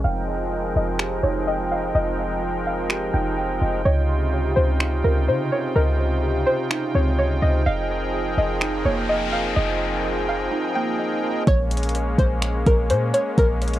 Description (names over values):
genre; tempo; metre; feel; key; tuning
hip hop, atmospheric cloud-rap; 126 BPM; 4/4; half-time; Bb dorian; A4 = 440 Hz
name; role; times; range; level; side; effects
string-like resonator pluck; melody; 0.0-13.8 s; Bb4 to G5; -25 LUFS; equal; chorus, low-pass filter, cassette tape, analog delay
pipe organ, strings celeste; sustained chords; 0.0-13.8 s; C3 to G5; -26 LUFS; equal; low-pass filter, cassette tape
mellow electric guitar; arpeggios; 0.0-11.5 s; Bb3 to C6; -29 LUFS; right 3 dB; wide subtle chorus, low-pass filter, cassette tape, analog delay, plate reverb
clean 808-style bass; bass; 0.0-13.8 s; F1 to Db3; -23 LUFS; equal; none
downlifter and noise sweep; sound effects; 0.0, 8.3-10.5 s; none; -33 LUFS; left 4 dB; none
smooth R&B drum kit; drums; 1.0-13.8 s; finger snaps, hi-hat, kick drum; -21 LUFS; equal; cassette tape
room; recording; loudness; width
light reverb; home recording on cassette; -19 LUFS; side -14 dB against mid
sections
0.0-11.5 A section; 11.5-13.8 B section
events
break 0.0-3.9; filter sweep 0.0-11.5; noise sweep 8.3-11.5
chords
0.0 Fm11; 3.9 Dbmaj9#11; 7.7 Fm11; 11.5 Bbm7